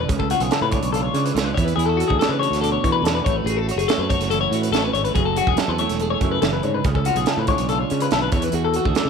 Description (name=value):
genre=math rock and midwest emo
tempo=142 BPM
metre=4/4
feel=straight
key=A major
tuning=A4 = 440 Hz
part: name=twelve-string electric guitar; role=accompaniment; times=0.0-9.1 s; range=A2 to C#5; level=-25 LUFS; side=right 12 dB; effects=none
part: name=twelve-string electric guitar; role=arpeggios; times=0.0-9.1 s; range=F#4 to C#5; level=-22 LUFS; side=left 12 dB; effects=phaser
part: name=modern bright fingered electric bass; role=bass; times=0.0-9.1 s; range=E1 to E3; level=-24 LUFS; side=equal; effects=none
part: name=crisp fusion drum kit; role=drums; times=0.1-9.1 s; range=hi-hat, kick drum, snare drum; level=-24 LUFS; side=right 3 dB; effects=none
room=light reverb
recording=1960s-style stereo with parts hard left and right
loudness=-18 LUFS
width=side -6 dB against mid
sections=0.0-9.1 A section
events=none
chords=0.1 C#7b9b13; 1.6 E9sus4; 3.3 A6; 5.2 F#m9; 6.8 C#7b9b13; 8.3 E9sus4